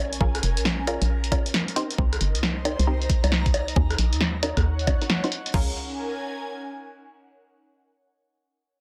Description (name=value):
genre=UK garage, two-step garage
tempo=135 BPM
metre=4/4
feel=swing 64% on 16ths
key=Bb minor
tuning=A4 = 440 Hz
part: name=hollow knocking FM bass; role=bass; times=0.0-5.7 s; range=F1 to Eb2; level=-27 LUFS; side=equal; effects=none
part: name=airy breathy pad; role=texture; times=0.0-7.3 s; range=Db4 to Bb5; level=-37 LUFS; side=equal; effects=chorus, phaser, sidechain pumping
part: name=punchy analog drum machine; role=drums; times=0.1-5.5 s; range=bongos, hi-hat, rim click, snare drum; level=-28 LUFS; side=equal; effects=low-pass filter on hats, low-pass filter on snare, low-pass filter on perc, low-pass filter on room
part: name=punchy chord stab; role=stabs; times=0.2-5.7 s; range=C4 to C5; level=-34 LUFS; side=equal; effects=chorus, delay
part: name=garage drum kit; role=drums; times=0.2-5.7 s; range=crash cymbal, kick drum, toms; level=-27 LUFS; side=equal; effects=overdrive
room=light reverb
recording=dense, heavily limited modern master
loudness=-24 LUFS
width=mono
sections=0.0-5.5 A section; 5.5-7.3 B section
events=filter sweep on FM bass 0.0-5.5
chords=0.0 Bbm7; 1.8 Cm7; 3.8 Ebm7; 5.5 Bbm7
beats=| 0.21 0.65 1.09 1.54 | 1.98 2.43 2.87 3.32 | 3.76 4.21 4.65 5.09 | 5.54 5.98 6.43 6.87